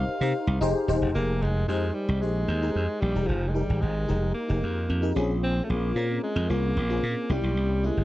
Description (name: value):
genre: polished 1980s jazz-funk pop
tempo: 112 BPM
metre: 4/4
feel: straight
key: F minor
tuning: A4 = 443 Hz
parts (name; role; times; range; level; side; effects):
- breathy alto saxophone; melody; 0.0-8.0 s; F3 to F5; -30 LUFS; equal; none
- FM electric piano; accompaniment; 0.0-8.0 s; Bb3 to C5; -30 LUFS; left 2 dB; ensemble chorus
- slap bass; bass; 0.0-8.0 s; Eb1 to C3; -26 LUFS; equal; none
room: small room ambience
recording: dry, close 1970s-style studio recording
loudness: -24 LUFS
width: side -16 dB against mid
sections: 0.0-1.1 A section; 1.1-8.0 B section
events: none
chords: 0.0 Cm7; 0.6 Fm7; 1.1 Fm11; 5.2 Bbm9; 7.3 C7b9